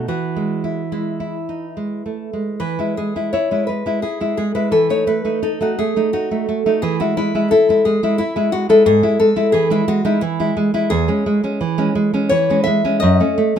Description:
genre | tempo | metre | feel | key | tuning
romantic duo for nylon-string guitar and classical guitar | 69-90 BPM | 3/4 | rubato | E major | A4 = 440 Hz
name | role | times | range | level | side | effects
nylon-string guitar | melody | 0.0-13.6 s | D#4 to E5 | -18 LUFS | left 3 dB | none
nylon-string guitar | accompaniment | 0.0-13.6 s | E2 to E4 | -18 LUFS | right 2 dB | none
room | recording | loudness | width
light reverb | minimal, uncompressed stereo recording | -15 LUFS | side -8 dB against mid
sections
0.0-2.6 A section; 2.6-13.6 A section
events
none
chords
0.1 E; 4.7 B7 (rootless); 6.8 E; 8.9 E/G#; 10.9 C#m/E; 13.0 F#m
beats
| 0.09 0.93 1.77 | 2.60 3.33 4.04 | 4.73 5.43 6.14 | 6.82 7.51 8.19 | 8.86 9.53 10.21 | 10.90 11.59 12.29 | 13.01

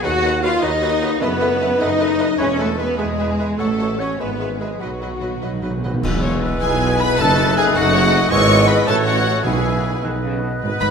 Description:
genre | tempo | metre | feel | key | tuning
classical, dramatic, fast romantic movement for symphony orchestra | 96-109 BPM (dotted quarters) | 6/8 | straight | E major | A4 = 440 Hz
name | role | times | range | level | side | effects
rich symphonic violin section | melody | 0.0-10.9 s | D#5 to C#6 | -23 LUFS | left 2 dB | none
mellow clarinet | second line | 0.0-10.9 s | F#4 to F#5 | -26 LUFS | left 2 dB | none
mellow hollow concert flute | second line | 0.0-10.9 s | D#5 to F#6 | -29 LUFS | left 1 dB | none
warm oboe | second line | 0.0-10.9 s | F#4 to C#5 | -28 LUFS | right 1 dB | none
warm symphonic violin section | second line | 0.0-10.9 s | F#4 to F#5 | -26 LUFS | left 3 dB | none
clear bassoon | accompaniment | 0.0-10.9 s | F#3 to B3 | -28 LUFS | right 3 dB | none
warm symphonic viola section | accompaniment | 0.0-10.9 s | F#4 to D#5 | -28 LUFS | right 1 dB | none
mellow French horn section | sustained chords | 0.0-10.9 s | F#3 to F#4 | -24 LUFS | left 5 dB | none
mellow tuba | bass | 0.0-10.9 s | E1 to D#2 | -26 LUFS | right 3 dB | none
rich chamber double bass section | bass | 0.0-10.9 s | E1 to F#2 | -25 LUFS | right 3 dB | none
rich symphonic cello section | bass | 0.0-10.9 s | E2 to F#4 | -24 LUFS | right 2 dB | none
timpani | percussion | 4.8-10.0 s | F#2 to B2 | -26 LUFS | equal | none
clash cymbals and concert bass drum | percussion | 6.0-6.8 s | none | -28 LUFS | equal | none
room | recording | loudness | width
wet concert hall reverb, RT60 2.4 s | minimal, uncompressed stereo recording | -16 LUFS | side -6 dB against mid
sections
0.0-6.0 A section; 6.0-10.9 B section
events
timpani fill 4.8-6.0; band accent 6.0-6.4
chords
0.0 B/D#; 1.2 B7/F#; 2.4 E; 3.6 F#m/A; 4.2 E/G#; 4.8 B; 6.0 E; 7.2 D#dim/F#; 8.3 E/G#; 8.9 F#m/A; 9.4 E/B; 10.0 B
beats
| 0.03 0.63 | 1.22 1.81 | 2.40 2.99 | 3.59 4.20 | 4.81 5.43 | 6.04 6.62 | 7.19 7.75 | 8.31 8.87 | 9.45 10.03 | 10.62

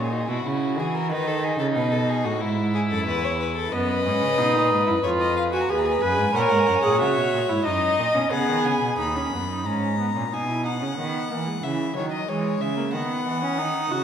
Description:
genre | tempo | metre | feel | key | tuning
classical, baroque-style fugue for string quartet | 91 BPM | 4/4 | straight | unclear | A4 = 439 Hz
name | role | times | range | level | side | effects
rich violin | melody | 0.0-14.0 s | E4 to B5 | -28 LUFS | left 5 dB | none
dark violin | second line | 0.0-9.0 s | C#4 to D#5 | -26 LUFS | left 1 dB | none
warm cello | bass | 0.0-14.0 s | D#2 to E3 | -26 LUFS | right 3 dB | none
warm viola | accompaniment | 3.7-14.0 s | E3 to B4 | -24 LUFS | right 1 dB | none
room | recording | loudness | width
wet recital hall reverb, RT60 1.3 s | none | -21 LUFS | side -8 dB against mid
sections
0.0-9.0 A section; 9.0-14.0 B section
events
none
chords
0.0 F#7/A#; 1.1 B7; 2.4 E; 3.7 B/F#; 5.0 C#7/E# (rootless); 6.4 F#7; 7.7 B/F#; 9.0 B/D#; 10.3 E/B; 11.6 A#dim/C# (rootless); 12.9 D#m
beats
0.45 | 1.10 1.76 2.42 3.08 | 3.73 4.39 5.04 5.70 | 6.36 7.01 7.66 8.32 | 8.99 9.66 10.32 10.98 | 11.63 12.28 12.93 13.58

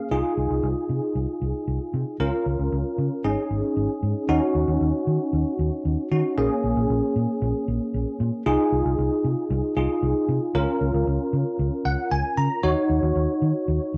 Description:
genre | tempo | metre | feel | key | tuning
synth-pop | 115 BPM | 4/4 | straight | Eb dorian | A4 = 440 Hz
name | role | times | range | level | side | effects
bell-like tine electric piano | accompaniment | 0.0-14.0 s | Bb3 to Bb5 | -26 LUFS | equal | ensemble chorus
vintage muted fingered electric bass | bass | 0.1-14.0 s | Ab1 to Eb3 | -27 LUFS | equal | none
room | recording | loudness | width
moderate studio reverb, RT60 0.6 s | home recording on cassette | -24 LUFS | mono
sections
0.0-4.3 A section; 4.3-14.0 B section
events
tine electric piano fill 11.6-12.6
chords
0.1 Fm7/C; 2.2 Db6; 3.2 Absus4; 4.3 Ebm7; 6.4 Bbm7; 8.5 Fm7/C; 10.5 Db6; 12.6 Ebm7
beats
| 0.11 0.64 1.16 1.68 | 2.20 2.72 3.24 3.77 | 4.29 4.81 5.33 5.85 | 6.37 6.89 7.42 7.94 | 8.46 8.98 9.50 10.03 | 10.55 11.07 11.59 12.11 | 12.63 13.16 13.68

